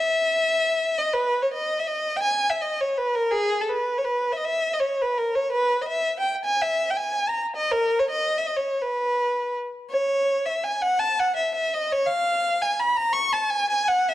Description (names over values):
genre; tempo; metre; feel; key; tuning
musette; 164 BPM; 3/4; swing 54% on 8ths; unclear; A4 = 437 Hz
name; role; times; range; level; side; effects
rich violin; solo; 0.0-14.1 s; G#4 to C#6; -21 LUFS; equal; none
room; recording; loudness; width
moderate recital hall reverb, RT60 1.3 s; dark, warm production; -21 LUFS; side -14 dB against mid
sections
0.0-9.9 A section; 9.9-14.1 B section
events
none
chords
none